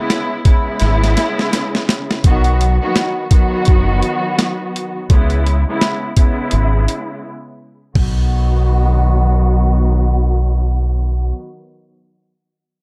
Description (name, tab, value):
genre	hip hop, boom-bap hip-hop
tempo	84 BPM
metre	4/4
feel	swing 61% on 16ths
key	B major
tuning	A4 = 440 Hz
part	muted studio string section	accompaniment	0.0-11.3 s	C#3 to F#4	-22 LUFS	equal	cassette tape, high-pass filter, low-pass filter, plate reverb
part	boom bap sampler-style drum kit	drums	0.1-8.2 s	crash cymbal, hi-hat, kick drum, snare drum, toms	-17 LUFS	equal	none
part	deep dub fingered electric bass	bass	0.8-11.3 s	F#1 to C#2	-17 LUFS	equal	none
room	little or no reverb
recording	none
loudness	-16 LUFS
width	mono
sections	0.0-2.2 A section; 2.2-8.0 B section; 8.0-10.8 C section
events	drum fill 0.8-2.2; break 7.2-8.0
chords	0.0 C#m7; 2.2 B; 5.1 C#m7; 8.0 B